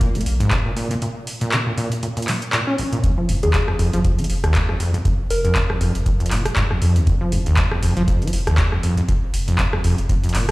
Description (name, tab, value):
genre	acid house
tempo	119 BPM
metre	4/4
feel	swing 56% on 16ths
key	F minor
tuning	A4 = 440 Hz
part	acid bass, saw	riff	0.0-10.5 s	Bb1 to Db4	-21 LUFS	equal	overdrive, digital delay
part	warm sub bass	bass	0.0-10.5 s	F1 to Bb2	-22 LUFS	equal	tube saturation, sidechain pumping
part	booming analog drum machine	drums	0.0-10.5 s	handclaps, hi-hat, rim click	-25 LUFS	equal	none
part	electronic kick drum	drums	0.0-10.2 s	none	-20 LUFS	equal	none
part	soft struck synth lead	melody	3.4-5.5 s	Ab4 to Bb4	-26 LUFS	left 1 dB	chorus, digital delay
room	light reverb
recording	played on a big sound system in a bare room, large studio reverb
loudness	-17 LUFS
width	side -20 dB against mid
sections	0.0-10.5 A section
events	break 1.0-3.0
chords	none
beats	0.01 0.52 | 1.02 1.52 2.03 2.53 | 3.04 3.54 4.04 4.55 | 5.05 5.56 6.06 6.57 | 7.07 7.57 8.08 8.58 | 9.09 9.59 10.09